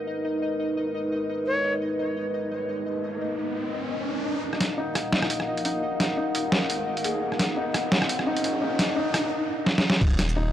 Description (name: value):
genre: half-time drum and bass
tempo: 172 BPM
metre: 4/4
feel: swing 57% on 16ths, half-time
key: Eb minor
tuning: A4 = 441 Hz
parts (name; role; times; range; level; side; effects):
- dark analog pad; sustained chords; 0.0-10.0 s; Ab3 to Gb5; -30 LUFS; equal; chorus, sidechain pumping
- pulsing gated texture; texture; 0.0-10.5 s; Eb4 to F5; -34 LUFS; left 2 dB; chorus, built-in reverb
- breathy bright concert flute; melody; 1.5-1.7 s; Db5; -30 LUFS; equal; vintage 12-bit sampler grit, tape echo
- riser; sound effects; 2.5-9.3 s; none; -33 LUFS; right 1 dB; none
- dark detuned saw bass; bass; 4.4-10.5 s; Eb1 to Eb2; -34 LUFS; equal; high-pass filter
- boom bap sampler-style drum kit; drums; 4.5-10.3 s; crash cymbal, hi-hat, rim click, shaker, snare drum; -25 LUFS; equal; studio reverb
- felt-muted upright piano; arpeggios; 4.8-10.5 s; Eb4 to Bb4; -30 LUFS; left 2 dB; analog delay
- electronic kick drum; drums; 10.0-10.1 s; none; -22 LUFS; equal; studio reverb
room: light reverb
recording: dry, gritty hardware recording, cassette tape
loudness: -24 LUFS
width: side -11 dB against mid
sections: 0.0-4.4 A section; 4.4-10.0 B section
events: riser 2.5-4.4, 4.4-9.3; build-up 4.4-10.0; drum fill 9.7-10.0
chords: 0.0 Abmadd9; 4.4 Ebm; 10.0 Eb5